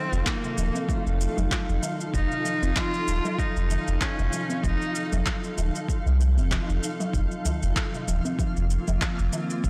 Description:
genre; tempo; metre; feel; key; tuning
organic downtempo; 96 BPM; 4/4; swing 55% on 16ths; unclear; A4 = 437 Hz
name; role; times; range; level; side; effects
rich cello; melody; 0.0-5.2 s; A3 to F4; -33 LUFS; equal; digital delay
granular cloud pad; sustained chords; 0.0-9.7 s; Bb3 to F5; -37 LUFS; equal; built-in reverb, sidechain pumping
kalimba; arpeggios; 0.0-9.4 s; C3 to C4; -35 LUFS; equal; digital delay
twinkling granular texture; texture; 0.0-9.7 s; F4 to F5; -42 LUFS; equal; built-in reverb
warm sub bass; bass; 0.1-9.7 s; Eb1 to C2; -26 LUFS; equal; tube saturation, sidechain pumping
electronic shaker and handclaps; drums; 0.1-9.7 s; none; -35 LUFS; equal; studio reverb
electronic kick drum; drums; 0.3-9.7 s; none; -31 LUFS; equal; studio reverb
udu; percussion; 7.5-8.2 s; none; -32 LUFS; equal; none
room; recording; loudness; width
light reverb; blown-out, overdriven recording, overdrive; -26 LUFS; mono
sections
0.0-9.7 A section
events
none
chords
0.0 F7; 7.1 Bbsus2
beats
0.27 0.89 1.51 | 2.14 2.77 3.39 4.01 | 4.64 5.26 5.89 6.51 | 7.14 7.76 8.39 9.02 | 9.64

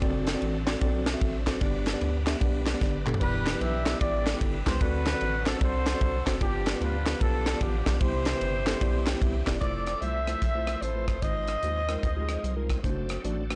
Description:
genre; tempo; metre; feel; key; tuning
uptempo gospel; 150 BPM; 4/4; swing 63% on 8ths; unclear; A4 = 440 Hz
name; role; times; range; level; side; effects
mellow tine electric piano; accompaniment; 0.0-13.6 s; G2 to G5; -36 LUFS; equal; none
bright tonewheel organ; sustained chords; 0.0-13.6 s; E3 to F#5; -44 LUFS; equal; none
rubbery square bass; bass; 0.0-13.6 s; E1 to Eb2; -33 LUFS; equal; none
crisp fusion drum kit; drums; 0.0-13.6 s; crash cymbal, hi-hat, kick drum, ride cymbal, rim click, snare drum, toms; -32 LUFS; equal; none
group handclap; percussion; 0.3-9.5 s; none; -41 LUFS; equal; none
mellow horn section; melody; 3.2-12.7 s; B3 to E5; -35 LUFS; equal; none
growling alto saxophone; melody; 9.6-12.7 s; C5 to E5; -37 LUFS; equal; none
room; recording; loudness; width
light reverb; blown-out, overdriven recording, overdrive, nothing above 10.4 kHz; -28 LUFS; mono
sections
0.0-9.6 A section; 9.6-13.6 B section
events
drum fill 2.8-3.2; tine electric piano fill 8.8-9.6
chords
0.0 D7/F#; 1.6 G; 3.2 Em7; 4.8 D7; 6.4 G7; 8.0 Cmaj7; 9.6 Fmaj7; 11.2 Ab6; 12.8 D7/F#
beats
| 0.02 0.42 0.82 1.22 | 1.62 2.02 2.42 2.81 | 3.21 3.61 4.01 4.41 | 4.81 5.21 5.61 6.01 | 6.41 6.81 7.21 7.61 | 8.01 8.41 8.81 9.21 | 9.61 10.01 10.41 10.82 | 11.22 11.62 12.03 12.43 | 12.83 13.24

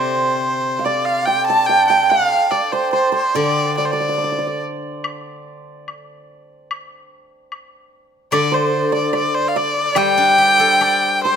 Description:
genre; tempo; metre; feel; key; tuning
chinese traditional, Chinese chamber ensemble; 73 BPM; 2/4; rubato; unclear; A4 = 440 Hz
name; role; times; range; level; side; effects
rich erhu; melody; 0.0-4.6, 8.3-11.4 s; C5 to A5; -17 LUFS; left 1 dB; none
hammered dulcimer; second line; 0.0-11.4 s; C5 to A5; -19 LUFS; right 3 dB; none
steel-string zither; accompaniment; 0.0-11.4 s; C3 to D5; -23 LUFS; left 3 dB; none
woodblock; percussion; 5.0-11.0 s; none; -27 LUFS; left 4 dB; none
room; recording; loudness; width
light reverb; close, detailed microphones; -14 LUFS; side -7 dB against mid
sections
0.0-11.4 A section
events
none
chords
none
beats
| 0.05 0.87 | 1.69 2.52 | 3.35 4.19 | 5.04 5.89 | 6.71 7.53 | 8.33 9.14 | 9.97 10.81

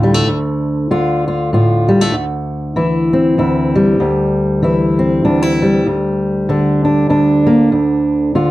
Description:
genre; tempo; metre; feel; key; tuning
folk; 97 BPM; 3/4; swing 59% on 8ths; unclear; A4 = 440 Hz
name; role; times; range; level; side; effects
fingerpicked steel-string acoustic guitar; solo; 0.0-8.5 s; D2 to F4; -12 LUFS; equal; slapback echo
room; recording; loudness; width
light reverb; dry, close 1970s-style studio recording; -12 LUFS; side -16 dB against mid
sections
0.0-8.5 A section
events
none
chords
0.0 Dm; 2.1 C/D; 5.9 Gm/D; 7.7 Dm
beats
| 0.28 0.90 1.52 | 2.14 2.76 3.38 | 4.00 4.62 5.24 | 5.86 6.48 7.10 | 7.72 8.34

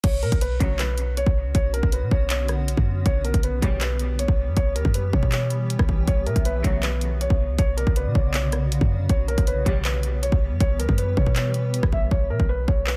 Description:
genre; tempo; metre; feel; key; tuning
hip hop, trap; 159 BPM; 4/4; half-time; B harmonic minor; A4 = 441 Hz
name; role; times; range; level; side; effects
felt-muted upright piano; melody; 0.0-13.0 s; A#4 to C#5; -32 LUFS; equal; low-pass filter, delay
granular cloud pad; sustained chords; 1.5-12.1 s; C#3 to G4; -35 LUFS; equal; built-in reverb
clean 808-style bass; bass; 0.0-13.0 s; B1 to B2; -26 LUFS; equal; none
trap drum kit; drums; 0.0-13.0 s; crash cymbal, handclaps, hi-hat, kick drum, rim click; -25 LUFS; equal; none
clear studio string section; stabs; 0.6-0.8, 3.6-3.8, 6.6-6.8, 9.7-9.8 s; D2 to G3; -35 LUFS; equal; delay
warm velvety synth lead; second line; 6.3-12.1 s; B4 to E5; -37 LUFS; equal; chorus, delay
room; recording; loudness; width
digital ambience; dense, heavily limited modern master; -22 LUFS; mono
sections
0.0-12.1 A section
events
hi-hats muted 12.1-13.0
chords
0.0 Bmadd9; 3.1 Em/B; 6.1 Bmadd9; 9.1 Em/B; 12.1 Bsus2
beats
| 0.04 0.42 0.79 1.17 | 1.55 1.93 2.30 2.68 | 3.06 3.44 3.81 4.19 | 4.57 4.94 5.32 5.70 | 6.08 6.45 6.83 7.21 | 7.59 7.96 8.34 8.72 | 9.10 9.47 9.85 10.23 | 10.61 10.98 11.36 11.74 | 12.11 12.49 12.87

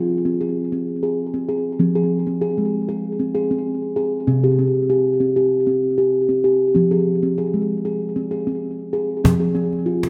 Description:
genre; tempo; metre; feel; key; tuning
world meditative, meditative tuned percussion; 97 BPM; 4/4; straight; F minor; A4 = 439 Hz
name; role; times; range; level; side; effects
steel tongue drum; arpeggios; 0.0-10.1 s; C3 to Ab4; -20 LUFS; equal; delay
cajon; percussion; 9.2-10.1 s; none; -21 LUFS; equal; none
room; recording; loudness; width
wet echo chamber reverb, RT60 1.9 s, studio reverb; none; -20 LUFS; mono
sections
0.0-9.2 A section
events
none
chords
0.0 Fm; 4.3 C5; 6.8 Fm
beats
0.56 1.18 | 1.80 2.42 3.04 3.66 | 4.28 4.90 5.52 6.14 | 6.76 7.38 8.00 8.62 | 9.24 9.87

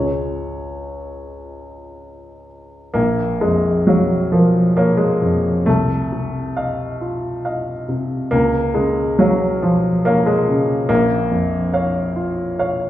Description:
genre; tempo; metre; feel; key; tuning
classical, romantic character piece for solo piano; 55-73 BPM; 3/4; rubato; Bb minor; A4 = 440 Hz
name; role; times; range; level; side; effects
warm baby grand piano; solo; 0.0-12.9 s; Bb1 to F5; -16 LUFS; equal; none
room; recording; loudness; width
wet recital hall reverb, RT60 1.2 s; heard from further back in the room; -16 LUFS; side -13 dB against mid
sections
0.0-2.9 A section; 2.9-12.9 B section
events
none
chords
0.0 Db; 2.9 Bbm; 5.7 F7/C; 8.3 Db6; 10.9 Bbm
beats
0.92 1.95 | 2.95 3.88 4.78 | 5.67 6.57 7.45 | 8.33 9.20 10.06 | 10.90 11.73 12.58

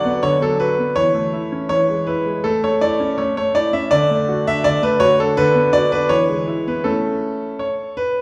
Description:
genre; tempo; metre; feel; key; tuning
classical-period piano sonatina; 81 BPM; 2/4; straight; A major; A4 = 440 Hz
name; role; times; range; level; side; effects
clear concert grand piano; solo; 0.0-8.2 s; D3 to F#5; -18 LUFS; equal; none
room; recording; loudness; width
wet recital hall reverb, RT60 1.4 s; heard from further back in the room; -18 LUFS; mono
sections
0.0-8.2 A section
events
none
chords
0.0 Bm/D; 1.0 A/E; 1.7 E; 2.5 A; 3.9 D; 5.4 Bm/D; 6.1 E; 6.8 A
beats
0.22 | 0.96 1.71 | 2.45 3.19 | 3.93 4.66 | 5.38 6.10 | 6.85 7.60

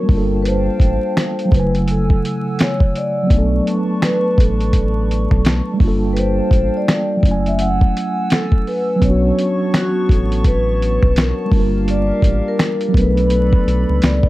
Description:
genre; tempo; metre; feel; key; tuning
lo-fi hip hop; 84 BPM; 4/4; swing 62% on 16ths; B minor; A4 = 440 Hz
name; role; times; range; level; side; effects
vibraphone with soft mallets; melody; 0.0-14.3 s; F#4 to F#5; -21 LUFS; left 1 dB; analog delay, plate reverb
mellow tine electric piano; accompaniment; 0.0-14.3 s; C#3 to G#5; -20 LUFS; right 1 dB; medium stereo tremolo, cassette tape
hollow soft pad; sustained chords; 0.0-14.3 s; B3 to E6; -30 LUFS; equal; chorus, plate reverb
round analog bass; bass; 0.1-14.3 s; F#1 to C#2; -19 LUFS; equal; none
dusty soul sampler-style drum kit; drums; 0.1-14.3 s; finger snaps, hi-hat, kick drum, snare drum; -15 LUFS; equal; overdrive, vintage 12-bit sampler grit
room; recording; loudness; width
light reverb; dark, warm production, vinyl crackle; -14 LUFS; side -17 dB against mid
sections
0.0-14.3 A section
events
none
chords
0.1 Gm9; 1.5 F#m9; 3.3 Bm9; 5.8 Gm9; 7.2 F#m9; 9.0 Bm9; 11.5 Gm9; 12.9 Bm9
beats
| 0.45 1.16 1.88 2.59 | 3.30 4.02 4.73 5.45 | 6.16 6.88 7.59 8.30 | 9.02 9.73 10.45 11.16 | 11.88 12.59 13.30 14.02

